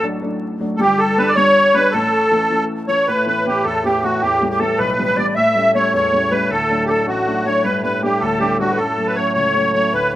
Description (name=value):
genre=celtic folk, Celtic jig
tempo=105 BPM (dotted quarters)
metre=6/8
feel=straight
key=A mixolydian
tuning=A4 = 444 Hz
part: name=musette accordion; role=melody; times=0.0-10.2 s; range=F#4 to E5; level=-17 LUFS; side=right 1 dB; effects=none
part: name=alto recorder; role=second line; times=0.0-10.2 s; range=F#4 to E5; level=-20 LUFS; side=left 2 dB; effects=none
part: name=dark upright piano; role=accompaniment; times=0.0-10.2 s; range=G1 to D4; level=-22 LUFS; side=left 1 dB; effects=none
part: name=pedal harmonium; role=drone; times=3.1-10.2 s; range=A2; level=-26 LUFS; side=equal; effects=none
room=wet spring reverb, RT60 1.9 s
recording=minimal, uncompressed stereo recording, vinyl crackle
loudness=-14 LUFS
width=side -14 dB against mid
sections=0.0-3.1 A section; 3.1-10.2 B section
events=none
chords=0.0 D/A; 0.8 G; 1.9 A; 3.1 Asus2; 4.2 Em; 5.4 A7; 6.5 D; 7.6 G; 8.8 F#m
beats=0.22 | 0.79 1.36 | 1.93 2.50 | 3.07 3.65 | 4.22 4.79 | 5.36 5.93 | 6.50 7.07 | 7.64 8.22 | 8.79 9.36 | 9.93